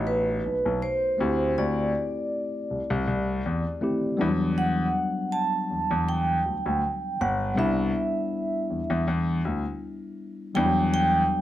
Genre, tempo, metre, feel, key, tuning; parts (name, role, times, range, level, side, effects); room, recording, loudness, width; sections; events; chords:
lush 1970s-style soul; 80 BPM; 4/4; swing 54% on 16ths; E minor; A4 = 440 Hz
vibraphone with medium mallets; melody; 0.0-11.4 s; B4 to A5; -27 LUFS; right 2 dB
barky tine electric piano; accompaniment; 0.0-11.4 s; F#3 to G4; -29 LUFS; left 2 dB; overdrive
clear grand piano; bass; 0.0-11.2 s; G1 to E2; -27 LUFS; left 1 dB
light reverb, small room ambience; -23 LUFS; side -13 dB against mid
0.0-10.6 A section
0.0 B7; 1.2 D9sus4; 4.2 Em9; 7.6 Cmaj9 (rootless); 10.6 Em9